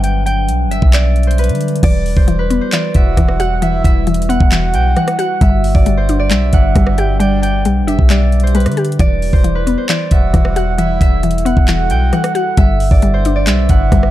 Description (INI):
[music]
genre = hip hop, trap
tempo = 134 BPM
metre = 4/4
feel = half-time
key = E minor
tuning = A4 = 440 Hz
[part]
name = Celtic harp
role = melody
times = 0.0-14.1 s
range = B4 to G5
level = -20 LUFS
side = right 3 dB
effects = low-pass filter
[part]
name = warbly tape-like pad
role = sustained chords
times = 0.0-14.1 s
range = F#3 to B4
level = -23 LUFS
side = left 1 dB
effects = chorus, built-in reverb
[part]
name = warm 808-style bass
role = bass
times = 0.0-14.1 s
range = E1 to D3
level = -15 LUFS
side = equal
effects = none
[part]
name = trap drum kit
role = drums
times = 0.0-14.1 s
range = crash cymbal, handclaps, hi-hat, kick drum, rim click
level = -14 LUFS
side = equal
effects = none
[part]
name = mallet-like synth pluck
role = accompaniment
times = 1.8-14.1 s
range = E3 to G4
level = -19 LUFS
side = left 4 dB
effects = chorus, low-pass filter
[part]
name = breathy flute-like synth lead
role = second line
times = 3.0-14.1 s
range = D5 to F#5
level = -25 LUFS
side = right 5 dB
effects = chorus, ping-pong delay
[sound]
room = little or no reverb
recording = dark, warm production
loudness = -11 LUFS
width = side -14 dB against mid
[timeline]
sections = 0.0-1.8 A section; 1.8-14.1 B section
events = none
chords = 0.0 Gmaj7; 1.8 Emadd9; 5.4 Gmaj7; 9.0 Emadd9; 12.6 Gmaj7